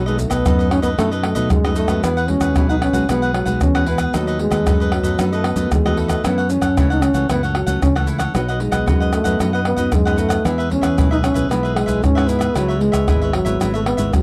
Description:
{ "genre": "samba and choro", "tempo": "114 BPM", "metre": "4/4", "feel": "straight", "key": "E major", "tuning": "A4 = 440 Hz", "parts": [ { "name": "breathy trombone", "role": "melody", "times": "0.0-14.2 s", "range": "F#3 to D#4", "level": "-23 LUFS", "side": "equal", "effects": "none" }, { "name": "cavaquinho", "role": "accompaniment", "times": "0.0-14.2 s", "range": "D#4 to F#5", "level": "-28 LUFS", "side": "equal", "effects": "none" }, { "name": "nylon-string guitar", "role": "accompaniment", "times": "0.0-14.2 s", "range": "F#2 to F#4", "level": "-28 LUFS", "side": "equal", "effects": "none" }, { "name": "fingered electric bass", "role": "bass", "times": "0.0-14.2 s", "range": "G#1 to B2", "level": "-24 LUFS", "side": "equal", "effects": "none" }, { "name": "maracas, pandeiro, surdo and tamborim", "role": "percussion", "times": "0.1-14.2 s", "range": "none", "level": "-22 LUFS", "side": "equal", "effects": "none" } ], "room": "light reverb", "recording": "dry, close 1970s-style studio recording", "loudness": "-18 LUFS", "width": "mono", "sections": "0.0-2.0 A section; 2.0-14.2 B section", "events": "none", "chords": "0.0 B7; 2.0 Eadd9; 4.1 B7/D#; 6.2 F#m7; 8.3 B; 10.5 E; 12.6 C#m7" }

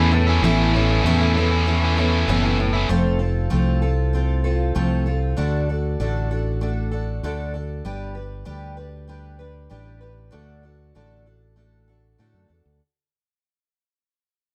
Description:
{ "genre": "folk rock and heartland rock", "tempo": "97 BPM", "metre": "4/4", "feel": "straight", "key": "unclear", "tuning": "A4 = 440 Hz", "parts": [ { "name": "picked twelve-string acoustic guitar", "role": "accompaniment", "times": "0.0-12.8 s", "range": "A2 to B4", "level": "-26 LUFS", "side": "equal", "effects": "none" }, { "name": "biting overdriven guitar", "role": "riff", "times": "0.0-2.9 s", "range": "A2 to E4", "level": "-24 LUFS", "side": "equal", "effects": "none" }, { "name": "fingered electric bass", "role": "bass", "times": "0.0-12.8 s", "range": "F1 to A2", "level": "-24 LUFS", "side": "equal", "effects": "none" } ], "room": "light reverb", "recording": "none", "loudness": "-21 LUFS", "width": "mono", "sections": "0.0-12.8 A section", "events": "fade-out 0.0-12.8", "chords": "0.0 Aadd9; 2.9 F; 5.4 D; 7.8 G; 10.3 D" }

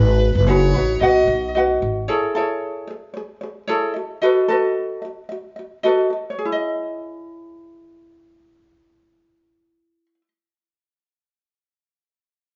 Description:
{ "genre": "pop", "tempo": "112 BPM", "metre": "4/4", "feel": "straight", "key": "C# minor", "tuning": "A4 = 445 Hz", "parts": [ { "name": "dark violin", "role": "melody", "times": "0.0-1.5 s", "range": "B4 to D#5", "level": "-25 LUFS", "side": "equal", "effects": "none" }, { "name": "ukulele", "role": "accompaniment", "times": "0.0-10.3 s", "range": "D#4 to F#5", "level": "-22 LUFS", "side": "equal", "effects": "none" }, { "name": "upright bass", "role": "bass", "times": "0.0-2.1 s", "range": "F#1 to B1", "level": "-21 LUFS", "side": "equal", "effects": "none" } ], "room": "wet large studio reverb, RT60 1.2 s", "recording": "band playing live in one room, nothing above 7.4 kHz", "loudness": "-20 LUFS", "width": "mono", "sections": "0.0-2.1 A section; 2.1-6.4 B section; 6.4-10.6 C section", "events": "none", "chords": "0.0 G#m7; 1.0 B; 2.1 Amaj7; 3.9 B7; 6.4 C#madd9" }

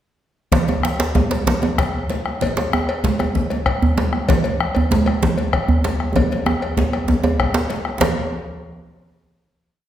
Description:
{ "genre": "west african traditional, West African drum ensemble", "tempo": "129 BPM (dotted quarters)", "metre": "12/8", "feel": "straight", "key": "none", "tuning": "none", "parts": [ { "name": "bombo", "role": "percussion", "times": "0.5-8.2 s", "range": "none", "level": "-23 LUFS", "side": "left 2 dB", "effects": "none" }, { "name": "congas", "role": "percussion", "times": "0.5-8.1 s", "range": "none", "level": "-25 LUFS", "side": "right 4 dB", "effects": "none" }, { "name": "cowbell", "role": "percussion", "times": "0.5-8.2 s", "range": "none", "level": "-27 LUFS", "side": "left 4 dB", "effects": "none" }, { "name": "djembe", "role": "percussion", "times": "0.5-8.2 s", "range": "none", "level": "-26 LUFS", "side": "left 2 dB", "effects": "none" }, { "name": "djembe", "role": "percussion", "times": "0.5-8.2 s", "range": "none", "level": "-20 LUFS", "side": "right 2 dB", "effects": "none" } ], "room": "wet recital hall reverb, RT60 1.4 s", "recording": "recorded in a church or concert hall", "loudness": "-17 LUFS", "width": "side -11 dB against mid", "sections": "0.5-8.0 A section; 8.0-9.8 final hit", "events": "drum fill 6.2-8.0", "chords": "none" }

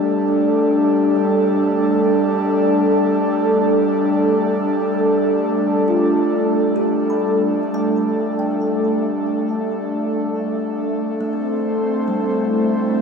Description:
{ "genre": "ambient", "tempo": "free time", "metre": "none", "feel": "none", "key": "unclear", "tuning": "A4 = 440 Hz", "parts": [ { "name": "airy breathy pad", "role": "sustained chords", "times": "0.0-13.0 s", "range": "G3 to C5", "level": "-16 LUFS", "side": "equal", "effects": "chorus" }, { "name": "kalimba", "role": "arpeggios", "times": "0.0-13.0 s", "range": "G3 to B5", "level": "-29 LUFS", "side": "equal", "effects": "ping-pong delay" } ], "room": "wet huge ambient reverb, RT60 8.1 s", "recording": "none", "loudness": "-16 LUFS", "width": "side -5 dB against mid", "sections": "0.0-13.0 A section", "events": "fade-in on kalimba 0.0-13.0", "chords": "0.0 Gsus2; 10.5 Am" }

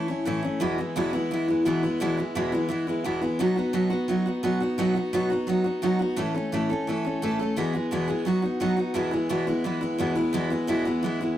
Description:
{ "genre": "rock", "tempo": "173 BPM", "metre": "4/4", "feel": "straight", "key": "E major", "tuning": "A4 = 439 Hz", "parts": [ { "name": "picked steel-string acoustic guitar", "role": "solo", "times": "0.0-11.4 s", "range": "E2 to A4", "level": "-23 LUFS", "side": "equal", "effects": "none" } ], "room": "wet booth ambience, RT60 0.2 s", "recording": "rough rehearsal-room recording, tube saturation", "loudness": "-23 LUFS", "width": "side -12 dB against mid", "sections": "0.0-9.0 A section; 9.0-11.4 B section", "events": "none", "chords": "0.0 A; 0.6 E; 3.4 B; 6.2 A; 7.6 E; 8.3 B; 9.0 E" }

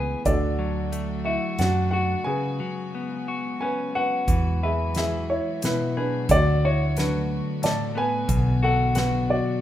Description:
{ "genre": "acoustic folk-pop ballad", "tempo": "90 BPM", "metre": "3/4", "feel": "straight", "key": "unclear", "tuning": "A4 = 441 Hz", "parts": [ { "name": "dark concert grand piano", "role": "melody", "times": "0.0-9.6 s", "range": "B3 to A5", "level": "-26 LUFS", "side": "equal", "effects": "none" }, { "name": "clean electric guitar", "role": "accompaniment", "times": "0.0-9.6 s", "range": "A2 to B4", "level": "-27 LUFS", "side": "left 4 dB", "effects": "none" }, { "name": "rich chamber string section", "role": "sustained chords", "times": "0.0-9.6 s", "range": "B2 to F#4", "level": "-35 LUFS", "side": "right 3 dB", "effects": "none" }, { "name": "vintage muted fingered electric bass", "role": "bass", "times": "0.0-9.4 s", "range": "B1 to F#2", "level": "-25 LUFS", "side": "right 1 dB", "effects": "none" }, { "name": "soft-mallet drum kit", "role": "drums", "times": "0.3-9.1 s", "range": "hi-hat, kick drum, snare drum", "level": "-28 LUFS", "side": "right 1 dB", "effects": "none" } ], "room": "light reverb", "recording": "minimal, uncompressed stereo recording", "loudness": "-22 LUFS", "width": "side -12 dB against mid", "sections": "0.0-4.3 A section; 4.3-9.6 B section", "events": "break 2.3-4.3", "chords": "0.3 D; 2.3 C#7sus4; 4.3 Eadd9; 6.3 D6; 8.3 Bm" }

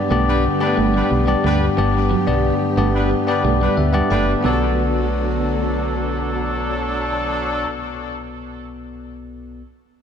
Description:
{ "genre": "pop", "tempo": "90 BPM", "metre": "4/4", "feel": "straight", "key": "B minor", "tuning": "A4 = 439 Hz", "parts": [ { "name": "bell-like tine electric piano", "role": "accompaniment", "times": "0.0-9.6 s", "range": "B1 to A5", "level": "-21 LUFS", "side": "left 3 dB", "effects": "none" }, { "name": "soft string machine", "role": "sustained chords", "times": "0.0-7.7 s", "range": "D3 to G4", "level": "-25 LUFS", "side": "right 1 dB", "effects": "ensemble chorus" }, { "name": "electric guitar at the edge of break-up", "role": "riff", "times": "0.1-4.6 s", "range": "F#3 to B3", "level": "-26 LUFS", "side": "right 10 dB", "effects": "lush chorus" }, { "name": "solid FM bass", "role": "bass", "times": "0.1-7.7 s", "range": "F#1 to D2", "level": "-22 LUFS", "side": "right 1 dB", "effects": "none" }, { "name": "clear horn section", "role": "stabs", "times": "0.3-7.7 s", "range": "F#3 to B4", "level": "-25 LUFS", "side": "equal", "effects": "ping-pong delay" } ], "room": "light reverb, digital ambience", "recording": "none", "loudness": "-16 LUFS", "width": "side -8 dB against mid", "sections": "0.0-4.4 A section; 4.4-7.1 B section", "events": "tine electric piano fill 3.4-4.4", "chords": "0.0 G; 4.4 Bm7" }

